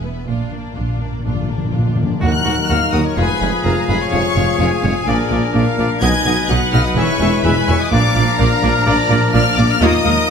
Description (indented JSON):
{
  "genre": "cinematic, heroic adventure film score",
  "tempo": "126 BPM",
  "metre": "4/4",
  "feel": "straight",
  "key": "unclear",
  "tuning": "A4 = 440 Hz",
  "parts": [
    { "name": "warm symphonic violin section", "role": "melody", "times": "0.0-10.3 s", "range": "D5 to Ab6", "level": "-22 LUFS", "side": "left 4 dB", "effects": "none" },
    { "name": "rich symphonic violin section", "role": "second line", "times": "0.0-10.3 s", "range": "D4 to Ab5", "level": "-26 LUFS", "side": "left 3 dB", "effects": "none" },
    { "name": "rich symphonic viola section", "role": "accompaniment", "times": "0.0-10.1 s", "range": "F#3 to Gb4", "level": "-24 LUFS", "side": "left 1 dB", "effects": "none" },
    { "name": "clear symphonic double bass section", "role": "bass", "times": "0.0-10.1 s", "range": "E1 to Eb2", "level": "-20 LUFS", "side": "right 2 dB", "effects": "none" },
    { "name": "rich symphonic cello section", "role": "bass", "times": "0.0-10.1 s", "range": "Eb2 to B2", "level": "-22 LUFS", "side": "right 2 dB", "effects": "none" },
    { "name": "timpani", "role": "percussion", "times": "0.3-2.9 s", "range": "Bb2 to Eb3", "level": "-22 LUFS", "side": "left 2 dB", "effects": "none" },
    { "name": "bright oboe", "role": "second line", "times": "2.2-10.2 s", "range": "Gb4 to E5", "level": "-27 LUFS", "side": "equal", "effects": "none" },
    { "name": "mellow clarinet", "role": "second line", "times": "2.2-10.3 s", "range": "Ab4 to Ab5", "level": "-26 LUFS", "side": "left 3 dB", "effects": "none" },
    { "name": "mellow silver concert flute", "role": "second line", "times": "2.2-10.1 s", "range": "F5 to G#5", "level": "-30 LUFS", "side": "left 5 dB", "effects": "none" },
    { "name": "mellow French horn section", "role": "sustained chords", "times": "2.2-10.3 s", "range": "F3 to F4", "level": "-23 LUFS", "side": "left 6 dB", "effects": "none" },
    { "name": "bright trumpet section", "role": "stabs", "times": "2.2-10.3 s", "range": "Ab4 to B4", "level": "-23 LUFS", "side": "equal", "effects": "none" },
    { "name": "warm tuba", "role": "bass", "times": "2.2-10.1 s", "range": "E1 to Eb2", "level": "-24 LUFS", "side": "right 3 dB", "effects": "none" }
  ],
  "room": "wet scoring stage reverb, RT60 1.7 s",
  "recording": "none",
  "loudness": "-13 LUFS",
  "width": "side -6 dB against mid",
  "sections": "0.0-2.2 A section; 2.2-10.3 B section",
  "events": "timpani fill 0.3-2.2",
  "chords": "0.3 Bb; 2.2 Ebm; 3.2 Fdim; 5.1 Bb; 6.0 B; 7.0 E; 7.9 Bb"
}